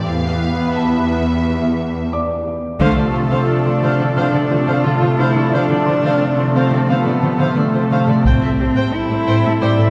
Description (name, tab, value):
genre	cinematic, hybrid orchestral and electronic film score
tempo	88 BPM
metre	4/4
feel	straight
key	D dorian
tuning	A4 = 440 Hz
part	warm symphonic violin section	melody	0.0-2.1 s	E5 to F5	-30 LUFS	equal	none
part	analog string pad	sustained chords	0.0-9.9 s	C3 to E5	-21 LUFS	equal	ensemble chorus
part	rich symphonic cello section	bass	0.0-9.9 s	E2 to D3	-22 LUFS	equal	none
part	felt-muted upright piano	texture	0.0-9.9 s	D5 to F6	-31 LUFS	equal	none
part	warm cello	melody	2.8-9.9 s	A3 to F4	-21 LUFS	equal	none
part	rich studio viola section	accompaniment	2.8-9.9 s	F4 to G5	-25 LUFS	equal	none
part	taiko ensemble	drums	2.8-4.1, 8.2-9.6 s	none	-24 LUFS	equal	none
room	wet scoring stage reverb, RT60 1.6 s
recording	heard from further back in the room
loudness	-16 LUFS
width	mono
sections	0.0-2.8 A section; 2.8-9.9 B section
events	band accent 2.8-3.5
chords	0.1 Em; 2.8 Dm7; 8.3 Am7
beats	| 0.07 0.75 1.43 2.11 | 2.80 3.48 4.16 4.84 | 5.52 6.21 6.89 7.57 | 8.25 8.93 9.61